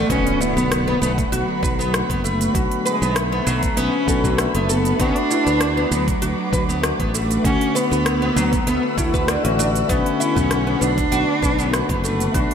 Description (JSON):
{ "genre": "organic downtempo", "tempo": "98 BPM", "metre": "4/4", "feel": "swing 53% on 16ths", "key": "B minor", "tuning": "A4 = 444 Hz", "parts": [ { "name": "ethereal airy pad", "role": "sustained chords", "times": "0.0-12.5 s", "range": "B4 to E6", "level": "-28 LUFS", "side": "left 1 dB", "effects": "ensemble chorus, built-in reverb, sidechain pumping" }, { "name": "oud", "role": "arpeggios", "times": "0.0-12.5 s", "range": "F#3 to B4", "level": "-24 LUFS", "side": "equal", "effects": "ping-pong delay, slapback echo" }, { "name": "sustaining fretless electric bass", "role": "bass", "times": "0.0-12.5 s", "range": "F#1 to D2", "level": "-23 LUFS", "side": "equal", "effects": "sidechain pumping" }, { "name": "rich cello", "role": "melody", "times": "0.1-12.5 s", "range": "F#3 to D4", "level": "-23 LUFS", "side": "right 1 dB", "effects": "ping-pong delay, slapback echo" }, { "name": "bright tine electric piano", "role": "accompaniment", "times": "0.1-12.5 s", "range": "D3 to B4", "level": "-26 LUFS", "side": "left 4 dB", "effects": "sidechain pumping, ping-pong delay, slapback echo" }, { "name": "electronic kick drum", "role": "drums", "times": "0.1-12.5 s", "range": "none", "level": "-24 LUFS", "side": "equal", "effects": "small room reverb" }, { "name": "organic electronic drum kit", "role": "drums", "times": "0.1-12.5 s", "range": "hi-hat, rim click, shaker", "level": "-26 LUFS", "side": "right 1 dB", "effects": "overdrive, small room reverb" }, { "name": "impact", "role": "sound effects", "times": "0.1-2.5 s", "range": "none", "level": "-30 LUFS", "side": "equal", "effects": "none" }, { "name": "udu", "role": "percussion", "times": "10.4-11.1 s", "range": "none", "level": "-30 LUFS", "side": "left 1 dB", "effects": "none" } ], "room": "moderate scoring stage reverb, RT60 1.8 s, digital ambience", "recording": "big arena sound", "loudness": "-17 LUFS", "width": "side -7 dB against mid", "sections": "0.1-12.5 A section", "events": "impact 0.1-2.5", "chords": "0.1 Bm7; 5.0 D; 9.9 Bm7" }